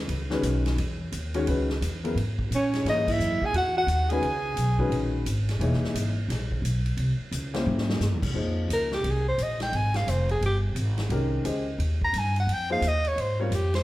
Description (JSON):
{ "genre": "modal jazz", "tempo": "174 BPM", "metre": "4/4", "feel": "swing 63% on 8ths", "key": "C# dorian, F minor from 8.4 s", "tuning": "A4 = 440 Hz", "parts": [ { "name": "upright bass", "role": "bass", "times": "0.0-13.8 s", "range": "E1 to A#2", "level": "-27 LUFS", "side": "equal", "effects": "none" }, { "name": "swinging big-band drum kit", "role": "drums", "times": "0.1-13.8 s", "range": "crash cymbal, hi-hat, kick drum, ride cymbal, snare drum, toms", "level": "-34 LUFS", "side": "equal", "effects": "none" }, { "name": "warm grand piano", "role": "accompaniment", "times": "0.3-8.9, 11.1-13.5 s", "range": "C#3 to Eb5", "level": "-30 LUFS", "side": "left 2 dB", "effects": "none" }, { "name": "breathy soprano saxophone", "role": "melody", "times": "2.5-5.1, 8.7-13.8 s", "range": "Eb4 to Bb5", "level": "-27 LUFS", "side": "equal", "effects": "none" }, { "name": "growling alto saxophone", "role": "second line", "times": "2.5-5.1 s", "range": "C#4 to G#4", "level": "-29 LUFS", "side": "right 2 dB", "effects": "none" } ], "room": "wet large studio reverb, RT60 1.4 s", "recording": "heard from further back in the room", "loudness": "-24 LUFS", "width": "side -16 dB against mid", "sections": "0.0-8.4 A section; 8.4-13.8 B section", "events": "band accent 3.0; drum fill 7.7-8.0; soprano saxophone solo 8.4-13.8", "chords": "0.0 C#m9; 7.0 C7b9; 8.4 Fm9", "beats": "| 0.09 0.44 0.78 1.13 | 1.47 1.82 2.16 2.51 | 2.85 3.19 3.54 3.88 | 4.23 4.57 4.92 5.26 | 5.61 5.95 6.29 6.64 | 6.98 7.33 7.67 8.01 | 8.36 8.70 9.05 9.39 | 9.73 10.08 10.42 10.77 | 11.11 11.45 11.80 12.14 | 12.48 12.83 13.17 13.51" }